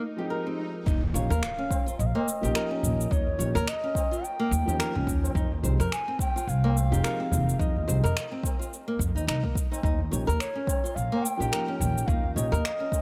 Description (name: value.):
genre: organic downtempo.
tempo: 107 BPM.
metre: 4/4.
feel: swing 58% on 16ths.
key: Eb mixolydian.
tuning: A4 = 440 Hz.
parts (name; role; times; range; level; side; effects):
bass bansuri; melody; 0.0-13.0 s; Db5 to Ab5; -35 LUFS; equal; delay, shimmer reverb.
swell and impact; sound effects; 0.0-3.1 s; none; -40 LUFS; equal; none.
felt-muted upright piano; accompaniment; 0.2-12.5 s; F3 to G4; -37 LUFS; equal; vintage 12-bit sampler grit, sidechain pumping, delay, shimmer reverb.
flamenco guitar; arpeggios; 0.2-13.0 s; Bb3 to Db5; -35 LUFS; equal; delay, shimmer reverb.
upright bass; bass; 0.9-12.6 s; F1 to F2; -29 LUFS; equal; sidechain pumping.
electronic cabasa and finger snaps; drums; 0.9-13.0 s; none; -37 LUFS; equal; overdrive.
electronic kick drum; drums; 0.9-13.0 s; none; -31 LUFS; equal; overdrive.
tabla; percussion; 1.0-13.0 s; none; -38 LUFS; equal; none.
room: light reverb.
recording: none.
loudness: -27 LUFS.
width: mono.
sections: 0.9-13.0 A section.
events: swell 0.0-0.9; impact 0.9-3.1.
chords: 0.0 Fm7; 0.9 Eb7; 5.3 Fm7; 9.8 Eb7.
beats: 0.30 | 0.86 1.43 1.99 2.55 | 3.11 3.67 4.23 4.79 | 5.35 5.91 6.47 7.03 | 7.59 8.15 8.71 9.28 | 9.84 10.40 10.96 11.52 | 12.08 12.64.